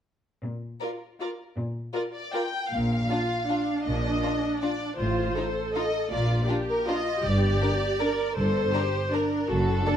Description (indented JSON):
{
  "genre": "classical, orchestral ballroom waltz",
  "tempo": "159 BPM",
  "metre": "3/4",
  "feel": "uneven beats, rubato",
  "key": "Bb major",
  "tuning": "A4 = 441 Hz",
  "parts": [
    { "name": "rich studio cello section", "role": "bass", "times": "0.4-9.8 s", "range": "F#2 to Bb2", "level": "-31 LUFS", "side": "equal", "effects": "none" },
    { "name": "rich chamber violin section", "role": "melody", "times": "0.8-10.0 s", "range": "A4 to G5", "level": "-30 LUFS", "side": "left 2 dB", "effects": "none" },
    { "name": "rich chamber violin section", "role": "second line", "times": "0.8-9.9 s", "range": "D4 to Bb4", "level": "-33 LUFS", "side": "left 1 dB", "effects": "none" },
    { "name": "rich chamber viola section", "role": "accompaniment", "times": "0.8-10.0 s", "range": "D4 to Bb4", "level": "-29 LUFS", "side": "right 1 dB", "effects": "none" },
    { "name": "rich chamber double bass section", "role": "bass", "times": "2.7-9.8 s", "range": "F#1 to Bb1", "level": "-30 LUFS", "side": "right 1 dB", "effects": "none" }
  ],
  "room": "wet stone room reverb, RT60 1.0 s",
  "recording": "dark, warm production",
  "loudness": "-24 LUFS",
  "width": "side -9 dB against mid",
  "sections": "0.4-2.7 A section; 2.7-10.0 B section",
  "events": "none",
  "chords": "0.4 Bb; 5.0 F7/A; 6.1 Bb; 7.2 Gm"
}